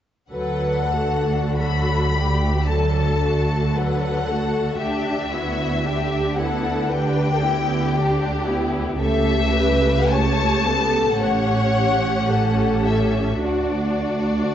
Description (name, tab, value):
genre	classical, slow romantic movement for string orchestra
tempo	46-58 BPM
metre	4/4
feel	rubato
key	D major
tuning	A4 = 440 Hz
part	warm studio violin section	melody	0.3-14.5 s	D5 to B5	-25 LUFS	left 5 dB	none
part	rich chamber violin section	second line	0.3-14.5 s	F#4 to C#5	-25 LUFS	left 1 dB	none
part	rich studio viola section	accompaniment	0.3-14.5 s	F#3 to A4	-25 LUFS	equal	none
part	rich studio cello section	bass	0.3-14.5 s	D2 to D3	-25 LUFS	right 2 dB	none
part	warm studio double bass section	bass	0.3-14.5 s	A1 to D2	-25 LUFS	right 2 dB	none
room	wet scoring stage reverb, RT60 1.9 s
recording	dark, warm production, nothing above 7.8 kHz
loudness	-18 LUFS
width	side -10 dB against mid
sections	0.3-14.5 A section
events	none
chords	0.3 D; 4.8 Em7/D; 9.0 A7/C#; 11.2 A7; 13.4 D